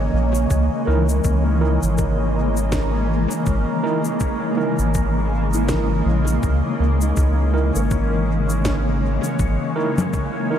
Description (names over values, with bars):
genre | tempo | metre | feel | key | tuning
ambient dub | 81 BPM | 4/4 | swing 59% on 16ths | C# dorian | A4 = 440 Hz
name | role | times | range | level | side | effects
granular cloud pad | sustained chords | 0.0-10.6 s | C#3 to D#5 | -22 LUFS | left 1 dB | built-in reverb
felt-muted upright piano | arpeggios | 0.0-10.6 s | A#3 to D#5 | -32 LUFS | left 4 dB | wide subtle chorus, analog delay
soft dub sub bass | bass | 0.0-9.6 s | G#1 to C#2 | -20 LUFS | equal | tube saturation
bubbling stepped-filter texture | texture | 0.0-10.6 s | C#4 to C#5 | -29 LUFS | right 1 dB | chorus, built-in reverb
electronic shaker, snare drum and congas | drums | 0.3-10.3 s | none | -28 LUFS | left 2 dB | overdrive, dub echo
electronic kick drum | drums | 0.5-10.3 s | none | -24 LUFS | equal | none
overdriven tine electric piano | stabs | 0.9-10.6 s | D#4 to A#4 | -29 LUFS | right 4 dB | fast tremolo, dub echo
room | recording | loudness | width
light reverb, digital ambience | none | -17 LUFS | side -9 dB against mid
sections
0.0-10.6 A section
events
none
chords
0.0 C#m69